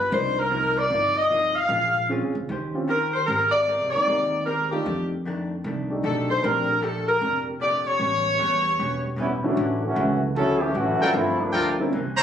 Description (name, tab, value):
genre	jazz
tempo	152 BPM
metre	4/4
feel	swing 65% on 8ths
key	Bb major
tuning	A4 = 440 Hz
part	warm saxophone section	melody	0.0-9.2 s	G4 to F5	-22 LUFS	left 1 dB	none
part	upright bass	bass	0.0-12.2 s	E1 to F2	-30 LUFS	right 1 dB	none
part	hollow-body jazz guitar	accompaniment	0.1-12.2 s	F2 to C5	-32 LUFS	left 2 dB	none
part	warm concert grand piano	accompaniment	0.1-6.7, 9.4-11.9 s	D3 to Bb4	-28 LUFS	equal	none
part	bright trombone section	second line	9.2-11.8 s	E3 to A4	-23 LUFS	equal	none
part	clear trumpet section	stabs	11.0-12.2 s	E4 to Bb5	-22 LUFS	equal	none
room	moderate large studio reverb, RT60 0.9 s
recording	recorded on a phone in the room, club reverb, compression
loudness	-21 LUFS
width	side -9 dB against mid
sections	0.0-9.6 A section; 9.6-12.2 B section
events	trombone section solo 9.6-12.2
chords	0.1 Cm11; 1.7 Bbm7; 2.5 Eb13; 3.3 Abmaj9; 4.9 F13; 6.4 Bbmaj13; 8.0 A9; 9.6 Dmaj9; 11.1 Gm9